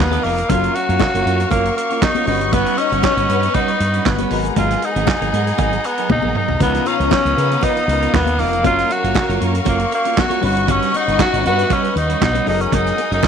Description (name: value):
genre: disco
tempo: 118 BPM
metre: 4/4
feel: straight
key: F# major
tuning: A4 = 438 Hz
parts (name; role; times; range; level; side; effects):
- raspy tenor saxophone; melody; 0.0-13.3 s; A#3 to F#4; -19 LUFS; equal; none
- clear baby grand piano; accompaniment; 0.0-13.3 s; C#3 to E#5; -27 LUFS; left 12 dB; none
- semi-hollow electric guitar; accompaniment; 0.0-13.3 s; E#3 to B4; -25 LUFS; right 14 dB; none
- clear studio string section; sustained chords; 0.0-13.3 s; B3 to D#6; -25 LUFS; left 3 dB; none
- fingered electric bass; bass; 0.0-13.2 s; E#1 to C#3; -21 LUFS; equal; none
- warm soul drum kit; drums; 0.0-13.3 s; handclaps, hi-hat, kick drum, snare drum, toms; -21 LUFS; right 4 dB; none
- congas; percussion; 0.1-13.3 s; none; -25 LUFS; left 14 dB; none
- dark studio string section; second line; 2.8-3.8, 6.9-7.8, 10.9-11.9 s; B3 to F#5; -24 LUFS; left 11 dB; tape echo
room: light reverb, small room reverb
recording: 1960s-style stereo with parts hard left and right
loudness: -14 LUFS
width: side -7 dB against mid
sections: 0.0-13.3 A section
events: drum fill 6.1-6.6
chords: 0.5 F#maj7; 2.3 D#7alt/G; 4.3 G#m9; 6.6 C#13; 8.6 F#maj7; 10.4 D#7alt/G; 12.5 F#69